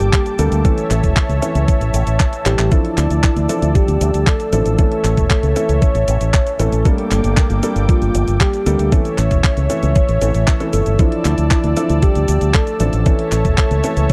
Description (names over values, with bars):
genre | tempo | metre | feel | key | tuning
italo disco | 116 BPM | 4/4 | straight | unclear | A4 = 441 Hz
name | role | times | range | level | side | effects
soft octave-layered synth lead | melody | 0.0-14.1 s | E4 to C#5 | -24 LUFS | equal | chorus, tape echo
warm analog pad | sustained chords | 0.0-14.1 s | Bb3 to E6 | -28 LUFS | equal | chorus
warm baby grand piano | stabs | 0.0-14.1 s | E3 to A4 | -26 LUFS | equal | none
fingered electric bass with an envelope filter | bass | 0.0-14.1 s | E1 to D2 | -19 LUFS | equal | tube saturation
clean 12-bit digital drum machine | drums | 0.0-14.1 s | cabasa, handclaps, hi-hat | -26 LUFS | equal | none
electronic kick drum | drums | 0.1-14.1 s | none | -17 LUFS | equal | none
room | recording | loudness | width
little or no reverb | dry, close 1970s-style studio recording | -16 LUFS | mono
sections
0.0-14.1 A section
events
drum fill 2.5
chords
0.0 Gmadd9; 0.6 A; 2.7 Dmadd9; 4.8 A; 6.9 Gmadd9; 8.9 A; 11.0 Dmadd9; 13.1 A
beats
0.13 | 0.65 1.17 1.68 2.20 | 2.72 3.23 3.75 4.27 | 4.79 5.30 5.82 6.34 | 6.86 7.37 7.89 8.41 | 8.92 9.44 9.96 10.47 | 10.99 11.51 12.03 12.54 | 13.06 13.58 14.10